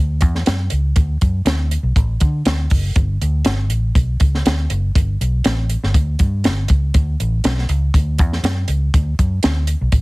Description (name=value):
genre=uptempo 1960s-style soul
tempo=120 BPM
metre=4/4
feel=straight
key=D major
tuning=A4 = 445 Hz
part: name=vintage muted fingered electric bass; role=bass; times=0.0-10.0 s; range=F#1 to D3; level=-18 LUFS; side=equal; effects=none
part: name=compact cocktail drum kit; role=drums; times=0.2-10.0 s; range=hi-hat, kick drum, snare drum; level=-16 LUFS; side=equal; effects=none
room=little or no reverb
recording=heavily compressed radio sound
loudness=-15 LUFS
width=side -24 dB against mid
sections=0.0-10.0 A section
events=none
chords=none